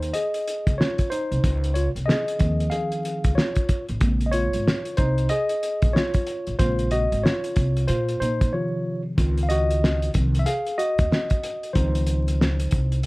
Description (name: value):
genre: hip hop, jazz-hop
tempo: 93 BPM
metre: 4/4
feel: swing 62% on 16ths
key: Db major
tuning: A4 = 440 Hz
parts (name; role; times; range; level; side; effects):
- tine electric piano; accompaniment; 0.0-13.0 s; C3 to F5; -25 LUFS; equal; medium stereo tremolo
- upright bass; bass; 0.0-13.0 s; Ab1 to Bb2; -24 LUFS; equal; none
- cloth-damped thuddy drum kit; drums; 0.0-13.1 s; hi-hat, kick drum, snare drum; -23 LUFS; equal; none
room: light reverb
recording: vinyl crackle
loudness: -20 LUFS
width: side -23 dB against mid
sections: 0.0-9.2 A section; 9.2-13.1 B section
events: tine electric piano solo 0.0-9.2, 9.2-13.1; break 8.5-9.2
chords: 0.0 Dbmaj9; 4.0 Bbm9; 8.5 Dbmaj9